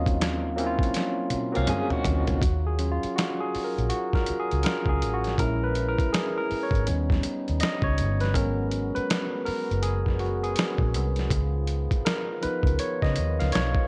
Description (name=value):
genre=R&B, neo-soul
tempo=81 BPM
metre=4/4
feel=swing 63% on 16ths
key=Eb minor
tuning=A4 = 440 Hz
part: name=barky tine electric piano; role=accompaniment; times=0.0-13.9 s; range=F3 to F5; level=-31 LUFS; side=equal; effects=overdrive
part: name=mellow French horn section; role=sustained chords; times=0.0-13.9 s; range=Eb3 to F5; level=-40 LUFS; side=equal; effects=none
part: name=vintage muted fingered electric bass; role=bass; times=0.0-13.8 s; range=Gb1 to Db3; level=-30 LUFS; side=equal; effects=none
part: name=boom bap sampler-style drum kit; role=drums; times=0.1-13.9 s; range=hi-hat, kick drum, snare drum, toms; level=-30 LUFS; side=equal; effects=none
part: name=electric guitar through a small old amp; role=second line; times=1.6-2.4 s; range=Db4 to Ab4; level=-35 LUFS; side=equal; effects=tremolo
room=light reverb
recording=worn, warbling old tape, cassette tape, warbly pitch drift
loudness=-26 LUFS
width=mono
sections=0.0-2.4 A section; 2.4-13.9 B section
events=drum fill 0.9-2.4; tine electric piano solo 2.4-13.9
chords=0.0 Ebm9; 5.4 Bbm7b5; 6.9 Ebaug7; 8.3 Abm11; 11.3 Db13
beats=0.20 0.94 1.68 | 2.42 3.16 3.90 4.64 | 5.38 6.12 6.86 7.60 | 8.34 9.09 9.83 10.57 | 11.31 12.05 12.79 13.53